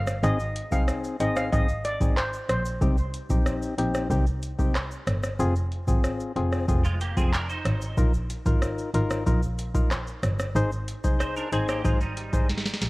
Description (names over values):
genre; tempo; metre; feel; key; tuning
dancehall; 93 BPM; 4/4; straight; unclear; A4 = 440 Hz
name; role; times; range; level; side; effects
steel pan; melody; 0.0-2.6 s; C5 to F5; -30 LUFS; equal; digital delay
muted double bass; bass; 0.0-12.9 s; F1 to C2; -28 LUFS; equal; none
booming analog drum machine; drums; 0.1-12.9 s; handclaps, hi-hat, kick drum, rim click, shaker, snare drum; -26 LUFS; equal; none
egg shaker; percussion; 0.1-12.9 s; none; -52 LUFS; right 1 dB; none
percussive organ stab; accompaniment; 0.2-12.5 s; C4 to C5; -30 LUFS; left 3 dB; chorus, sidechain pumping
clean electric guitar; arpeggios; 6.8-12.9 s; G3 to C5; -34 LUFS; right 3 dB; ensemble chorus
room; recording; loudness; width
little or no reverb; worn, warbling old tape, cassette tape, warbly pitch drift; -23 LUFS; side -22 dB against mid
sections
0.0-12.9 A section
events
drum fill 12.5-12.9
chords
0.2 Ab; 2.8 Cm; 5.4 Fm; 8.0 Bbsus4; 10.6 Ab